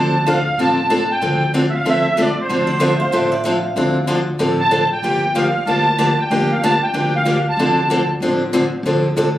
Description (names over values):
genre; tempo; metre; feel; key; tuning
acoustic string swing (jazz manouche); 189 BPM; 4/4; swing 60% on 8ths; D minor; A4 = 442 Hz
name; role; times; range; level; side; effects
musette accordion; melody; 0.0-8.1 s; C5 to A5; -18 LUFS; right 1 dB; plate reverb
picked steel-string acoustic guitar; accompaniment; 0.0-9.3 s; D3 to A4; -17 LUFS; left 1 dB; none
upright bass; bass; 0.0-9.4 s; G1 to D2; -24 LUFS; equal; none
picked steel-string acoustic guitar; second line; 2.7-4.0 s; D5 to F5; -24 LUFS; right 2 dB; none
room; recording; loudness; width
wet studio reverb, RT60 0.7 s; recorded on a phone in the room, club reverb; -14 LUFS; side -13 dB against mid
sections
0.0-9.4 A section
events
none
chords
0.0 Dm7; 5.0 Gm7; 7.6 Dm7